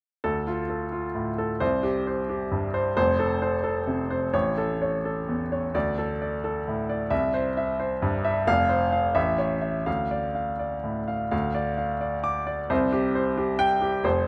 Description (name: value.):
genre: classical, virtuoso piano study.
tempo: 88 BPM (dotted quarters).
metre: 6/8.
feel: rubato.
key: D minor.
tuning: A4 = 440 Hz.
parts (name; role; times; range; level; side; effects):
clear baby grand piano; solo; 0.2-14.3 s; F1 to D6; -26 LUFS; equal; none.
room: wet recital hall reverb, RT60 1.5 s.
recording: none.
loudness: -26 LUFS.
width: mono.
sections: 0.2-11.3 A section; 11.3-14.3 A section.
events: none.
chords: 0.2 Dm; 1.6 C5; 3.0 F; 4.3 A; 5.7 D5; 7.1 C; 8.5 F5; 9.2 A; 9.9 Dm; 12.7 C5.